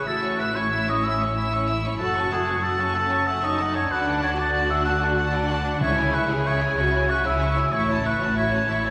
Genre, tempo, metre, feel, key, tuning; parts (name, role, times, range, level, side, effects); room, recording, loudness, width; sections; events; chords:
cinematic, heroic adventure film score; 126 BPM (dotted quarters); 12/8; straight; A4 = 440 Hz
warm studio violin section; melody; 0.0-8.9 s; F#5 to E6; -34 LUFS; equal
warm oboe; second line; 0.0-8.9 s; G#4 to F#5; -26 LUFS; equal
warm symphonic violin section; second line; 0.0-8.9 s; A3 to A5; -32 LUFS; equal
warm symphonic viola section; accompaniment; 0.0-8.9 s; C#4 to G#4; -32 LUFS; equal
rich symphonic double bass section; bass; 0.0-8.9 s; F#1 to D2; -32 LUFS; equal
warm symphonic cello section; bass; 0.0-8.9 s; F#2 to D3; -32 LUFS; equal
timpani; percussion; 5.8-6.3 s; C#3; -34 LUFS; equal
wet church reverb, RT60 2.8 s; recorded in a church or concert hall; -23 LUFS; mono
0.0-8.9 A section
0.1 A; 2.0 F#m; 3.9 D; 5.8 C#m; 7.7 A